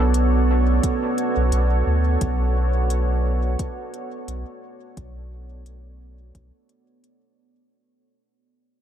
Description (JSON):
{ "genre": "ambient dub", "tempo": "87 BPM", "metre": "4/4", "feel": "swing 55% on 16ths", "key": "B minor", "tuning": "A4 = 440 Hz", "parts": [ { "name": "deep dark ambient pad", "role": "sustained chords", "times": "0.0-7.7 s", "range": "B3 to D5", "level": "-24 LUFS", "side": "right 3 dB", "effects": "chorus, built-in reverb" }, { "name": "warm sub bass", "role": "bass", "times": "0.0-6.5 s", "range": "B1 to D2", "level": "-21 LUFS", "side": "equal", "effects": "none" }, { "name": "electronic hi-hat", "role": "drums", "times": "0.1-7.2 s", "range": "none", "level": "-34 LUFS", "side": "left 3 dB", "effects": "none" }, { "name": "electronic kick drum", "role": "drums", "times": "0.8-6.5 s", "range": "none", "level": "-26 LUFS", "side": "equal", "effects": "none" } ], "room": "digital ambience", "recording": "echo-heavy mix", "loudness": "-18 LUFS", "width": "side -10 dB against mid", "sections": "0.0-7.7 A section", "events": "fade-out 0.0-7.7", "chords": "0.0 Bm7", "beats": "0.14 0.83 1.52 | 2.21 2.90 3.59 4.28 | 4.97 5.66 6.35 7.04" }